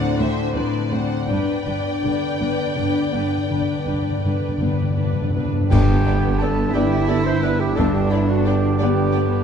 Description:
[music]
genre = classical, romantic movement for piano and orchestra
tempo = 53-59 BPM (dotted quarters)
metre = 12/8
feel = rubato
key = G major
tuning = A4 = 439 Hz
[part]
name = clear concert grand piano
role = melody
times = 0.0-9.4 s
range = G1 to G4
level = -22 LUFS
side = left 3 dB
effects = none
[part]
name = rich symphonic violin section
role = melody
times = 0.0-9.2 s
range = D5 to G5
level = -33 LUFS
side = left 3 dB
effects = none
[part]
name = rich symphonic violin section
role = second line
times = 0.0-9.2 s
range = B4 to D5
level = -32 LUFS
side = left 2 dB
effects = none
[part]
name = rich symphonic viola section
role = accompaniment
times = 0.0-9.2 s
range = B3 to C5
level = -30 LUFS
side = right 2 dB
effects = none
[part]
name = mellow French horn section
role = sustained chords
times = 0.0-9.4 s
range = B3 to D4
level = -29 LUFS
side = left 4 dB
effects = none
[part]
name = rich studio cello section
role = bass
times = 0.2-9.4 s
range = D2 to E4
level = -28 LUFS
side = right 4 dB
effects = none
[part]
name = rich studio double bass section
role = bass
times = 0.2-9.4 s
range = G1 to D2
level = -25 LUFS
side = right 6 dB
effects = none
[part]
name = timpani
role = percussion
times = 1.3-6.7 s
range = G2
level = -25 LUFS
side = equal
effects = none
[part]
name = mellow silver concert flute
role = second line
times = 5.7-9.2 s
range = E5 to C6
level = -31 LUFS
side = equal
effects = none
[part]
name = warm clarinet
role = second line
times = 5.7-9.4 s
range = E4 to C5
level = -26 LUFS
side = right 3 dB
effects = none
[part]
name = clash cymbals and concert bass drum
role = percussion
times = 5.7-7.1 s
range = none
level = -26 LUFS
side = right 2 dB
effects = none
[sound]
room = moderate scoring stage reverb, RT60 2.0 s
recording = dark, warm production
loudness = -18 LUFS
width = side -7 dB against mid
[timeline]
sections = 0.0-5.7 A section; 5.7-9.4 B section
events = timpani fill 1.3-5.7; band accent 5.7-6.4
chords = 0.0 D7; 1.3 G

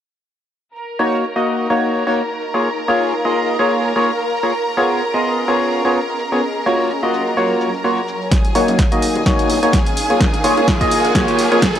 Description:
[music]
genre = piano house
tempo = 127 BPM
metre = 4/4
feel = swing 56% on 16ths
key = unclear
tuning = A4 = 444 Hz
[part]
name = clear studio violin section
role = sustained chords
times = 0.8-11.8 s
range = G#4 to A#5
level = -23 LUFS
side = right 1 dB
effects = sidechain pumping, low-pass filter
[part]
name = punchy analog drum machine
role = drums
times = 0.8-11.8 s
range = hi-hat, shaker, snare drum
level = -21 LUFS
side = equal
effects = overdrive, low-pass filter on perc, low-pass filter on snare, low-pass filter on hats
[part]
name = granular cloud pad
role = texture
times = 2.3-11.8 s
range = F#3 to A#5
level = -26 LUFS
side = equal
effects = built-in reverb, sidechain pumping
[part]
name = percussive organ stab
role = riff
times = 1.0-11.7 s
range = A#3 to D#5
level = -16 LUFS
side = equal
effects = lush chorus, sidechain pumping, analog delay
[part]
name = fat analog bass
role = bass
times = 8.3-11.8 s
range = D#1 to E#2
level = -26 LUFS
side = equal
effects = none
[part]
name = electronic kick drum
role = drums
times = 8.3-11.7 s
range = none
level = -18 LUFS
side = equal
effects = overdrive
[part]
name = riser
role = sound effects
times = 9.8-11.8 s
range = none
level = -26 LUFS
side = right 1 dB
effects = none
[sound]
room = light reverb, digital ambience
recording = dry, gritty hardware recording, high-pass filter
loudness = -14 LUFS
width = side -10 dB against mid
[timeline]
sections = 0.8-8.3 A section; 8.3-11.8 B section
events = build-up 8.3-11.8; drum fill 8.3-11.8; riser 9.8-11.8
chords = 0.8 D#m7; 2.4 A#m7; 4.5 C#7; 6.4 F#maj7; 8.3 D#m7; 10.0 A#m7

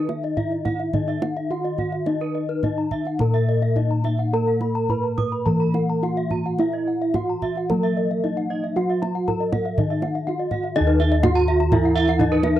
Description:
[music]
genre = Balinese gamelan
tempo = 106-125 BPM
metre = 4/4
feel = straight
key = Eb pelog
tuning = A4 = 437 Hz
[part]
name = gamelan-type bronze metallophone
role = melody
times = 0.0-12.6 s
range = Eb4 to Cb5-20c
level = -24 LUFS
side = equal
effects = none
[part]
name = gamelan-type bronze metallophone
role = accompaniment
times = 0.0-12.6 s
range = Eb3 to Bb3-30c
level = -30 LUFS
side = right 3 dB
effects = none
[part]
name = gamelan-type bronze metallophone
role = arpeggios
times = 0.0-12.4 s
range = Cb5-20c to Eb6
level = -30 LUFS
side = right 7 dB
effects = none
[part]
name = gamelan-type bossed gongs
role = bass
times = 0.0-12.6 s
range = Eb2 to Bb4-30c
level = -24 LUFS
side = left 1 dB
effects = none
[part]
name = gamelan-type bronze metallophone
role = arpeggios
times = 0.1-12.6 s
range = Cb5-20c to Cb6-20c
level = -28 LUFS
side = left 7 dB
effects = none
[part]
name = kendang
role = percussion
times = 0.1-12.5 s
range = none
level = -26 LUFS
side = right 2 dB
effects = none
[sound]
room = light reverb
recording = dry, close 1970s-style studio recording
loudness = -19 LUFS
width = side -12 dB against mid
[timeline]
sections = 0.0-10.8 A section; 10.8-12.6 B section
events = none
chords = none

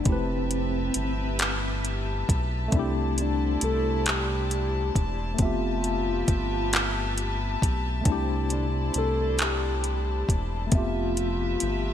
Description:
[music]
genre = slow six-eight R&B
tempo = 45 BPM (dotted quarters)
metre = 6/8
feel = straight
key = unclear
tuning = A4 = 440 Hz
[part]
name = soft octave-layered synth lead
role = melody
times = 0.0-11.9 s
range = C4 to A4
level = -31 LUFS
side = equal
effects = chorus
[part]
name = tine electric piano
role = accompaniment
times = 0.0-11.9 s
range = Ab3 to E5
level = -32 LUFS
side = left 2 dB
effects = fast stereo tremolo
[part]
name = warm studio string section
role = sustained chords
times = 0.0-11.9 s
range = E4 to A5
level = -34 LUFS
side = left 4 dB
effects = none
[part]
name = round analog bass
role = bass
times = 0.0-11.9 s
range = E1 to C2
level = -29 LUFS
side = equal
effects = none
[part]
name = smooth R&B drum kit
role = drums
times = 0.1-11.8 s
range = handclaps, hi-hat, kick drum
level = -26 LUFS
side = equal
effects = gated reverb
[sound]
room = light reverb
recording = bright 1980s-style digital production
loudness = -24 LUFS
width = side -10 dB against mid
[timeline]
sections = 0.0-11.9 A section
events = none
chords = 0.1 Fmaj9#11; 2.7 C69; 5.4 Fmaj9#11; 8.1 C69; 10.7 Fmaj9#11

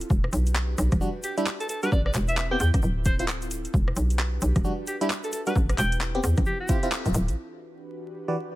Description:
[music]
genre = UK garage, two-step garage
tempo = 132 BPM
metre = 4/4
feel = swing 61% on 16ths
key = E minor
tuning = A4 = 440 Hz
[part]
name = airy breathy pad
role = sustained chords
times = 0.0-8.6 s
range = E3 to B4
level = -39 LUFS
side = equal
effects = chorus, sidechain pumping
[part]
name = hollow knocking FM bass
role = bass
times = 0.0-7.4 s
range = D1 to E2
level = -25 LUFS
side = equal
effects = tube saturation
[part]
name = garage drum kit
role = drums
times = 0.0-8.6 s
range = congas, handclaps, hi-hat, rim click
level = -31 LUFS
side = equal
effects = low-pass filter on snare, low-pass filter on hats, low-pass filter on perc
[part]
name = egg shaker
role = percussion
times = 0.0-7.4 s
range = none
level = -42 LUFS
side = left 2 dB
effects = none
[part]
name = electronic kick drum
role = drums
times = 0.1-6.8 s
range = none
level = -24 LUFS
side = equal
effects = overdrive
[part]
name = FM electric piano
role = stabs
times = 1.0-8.4 s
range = E3 to D5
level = -30 LUFS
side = right 1 dB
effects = chorus, ping-pong delay
[part]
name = clear alto saxophone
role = melody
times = 1.2-6.9 s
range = G4 to G5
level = -31 LUFS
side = equal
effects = ping-pong delay
[sound]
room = digital ambience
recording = vinyl crackle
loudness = -23 LUFS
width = side -17 dB against mid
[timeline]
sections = 0.0-7.4 A section; 7.4-8.6 B section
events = band accent 6.9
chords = 0.1 Em9; 1.9 Am9; 2.8 Dm9; 3.7 Em9; 5.6 Am9; 6.5 Dm9; 7.4 Em9

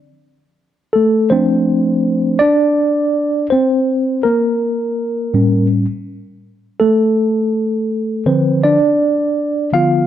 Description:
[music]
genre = hip hop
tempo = 82 BPM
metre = 4/4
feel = swing 57% on 16ths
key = unclear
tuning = A4 = 440 Hz
[part]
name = mellow tine electric piano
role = solo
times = 0.9-10.1 s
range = A2 to F5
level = -13 LUFS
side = equal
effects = medium stereo tremolo
[sound]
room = light reverb, digital ambience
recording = dark, warm production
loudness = -13 LUFS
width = side -11 dB against mid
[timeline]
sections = 0.0-1.3 A section; 1.3-10.1 B section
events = tine electric piano solo 0.0-1.3, 1.3-10.1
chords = 0.0 N.C.; 1.3 F6; 4.2 A7b9; 7.2 Dm6

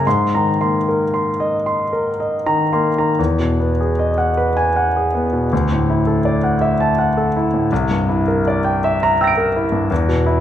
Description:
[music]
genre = classical, impressionist solo piano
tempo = 36-58 BPM (dotted quarters)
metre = 6/8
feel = rubato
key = unclear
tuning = A4 = 435 Hz
[part]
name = clear grand piano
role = solo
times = 0.0-10.4 s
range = C2 to D7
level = -15 LUFS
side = equal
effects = none
[sound]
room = wet recital hall reverb, RT60 1.5 s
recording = none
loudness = -15 LUFS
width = side -10 dB against mid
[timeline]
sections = 0.0-3.2 A section; 3.2-10.4 B section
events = none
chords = 0.1 Abadd9; 3.2 Emaj9; 5.5 Dadd9; 7.7 C9

